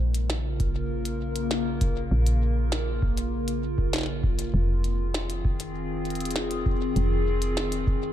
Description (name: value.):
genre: IDM.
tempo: 99 BPM.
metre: 4/4.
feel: straight.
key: unclear.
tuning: A4 = 439 Hz.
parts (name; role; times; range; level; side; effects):
warbly tape-like pad; sustained chords; 0.0-8.1 s; Db3 to Bb4; -29 LUFS; left 1 dB; chorus, built-in reverb, phaser.
woody FM bass; bass; 0.0-8.1 s; F1 to Bb1; -27 LUFS; equal; none.
glitchy drum kit; drums; 0.1-7.8 s; hi-hat, snare drum; -33 LUFS; equal; small room reverb, ping-pong delay.
electronic kick drum; drums; 0.6-8.0 s; none; -26 LUFS; equal; small room reverb.
room: light reverb.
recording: dark, warm production.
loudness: -24 LUFS.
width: side -11 dB against mid.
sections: 0.0-8.1 A section.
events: none.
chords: 0.0 Bbm; 4.5 Fm7.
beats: 0.30 0.90 1.51 | 2.12 2.72 3.33 3.93 | 4.54 5.14 5.75 6.36 | 6.96 7.57.